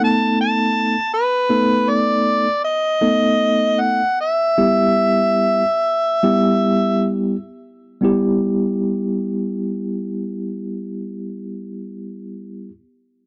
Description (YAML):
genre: blues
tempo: 64-80 BPM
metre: 4/4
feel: swing 54% on 16ths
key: E harmonic minor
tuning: A4 = 443 Hz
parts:
  - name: overdriven harmonica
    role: melody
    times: 0.0-7.1 s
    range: B4 to A5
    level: -19 LUFS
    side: equal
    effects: none
  - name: tine electric piano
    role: accompaniment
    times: 0.0-12.7 s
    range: G3 to A4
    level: -21 LUFS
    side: equal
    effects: medium tremolo
room: small room ambience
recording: dry, close 1970s-style studio recording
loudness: -18 LUFS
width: mono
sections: 0.0-8.0 A section; 8.0-11.8 B section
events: slowing down 1.5-8.0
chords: 0.0 B7; 4.6 Em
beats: 0.00 0.75 | 1.50 2.25 3.01 3.78 | 4.57 5.39 6.23 7.11 | 8.02 8.96 9.89 10.83